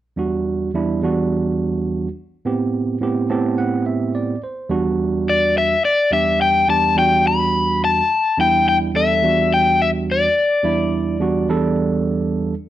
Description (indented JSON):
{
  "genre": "blues",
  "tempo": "106 BPM",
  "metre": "4/4",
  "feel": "swing 55% on 16ths",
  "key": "E minor",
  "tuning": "A4 = 439 Hz",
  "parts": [
    { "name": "overdriven tine electric piano", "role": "accompaniment", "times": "0.2-12.5 s", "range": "E2 to A5", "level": "-19 LUFS", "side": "right 3 dB", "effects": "none" },
    { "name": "crunchy overdriven guitar", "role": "melody", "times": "5.3-11.8 s", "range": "D5 to B5", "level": "-16 LUFS", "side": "left 3 dB", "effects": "none" }
  ],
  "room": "moderate studio reverb, RT60 0.8 s",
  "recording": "none",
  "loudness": "-16 LUFS",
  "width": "side -12 dB against mid",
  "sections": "0.2-4.7 A section; 4.7-12.7 B section",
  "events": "tine electric piano fill 3.0-4.7",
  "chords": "0.2 Em7; 2.4 Am7; 4.7 Em7"
}